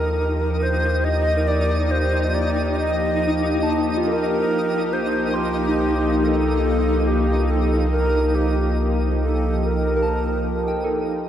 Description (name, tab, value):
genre	ambient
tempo	70 BPM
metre	4/4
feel	straight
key	unclear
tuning	A4 = 440 Hz
part	alto flute	melody	0.0-11.0 s	G4 to Eb5	-24 LUFS	equal	tape echo
part	warm analog pad	sustained chords	0.0-11.3 s	F3 to C5	-24 LUFS	equal	chorus, tremolo
part	soft synth bell	arpeggios	0.0-11.3 s	Eb4 to C6	-30 LUFS	right 1 dB	chorus, tape echo
part	round analog bass	bass	0.0-11.3 s	C2 to Eb2	-24 LUFS	equal	none
part	twinkling granular texture	texture	0.0-11.3 s	Eb4 to Eb7	-28 LUFS	left 2 dB	built-in reverb
room	wet huge ambient reverb, RT60 8.1 s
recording	dark, warm production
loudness	-18 LUFS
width	side -10 dB against mid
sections	0.0-11.3 A section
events	none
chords	0.0 Eb; 4.5 Cm7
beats	0.19 | 1.05 1.91 2.78 3.64 | 4.49 5.35 6.21 7.07 | 7.93 8.80 9.66 10.54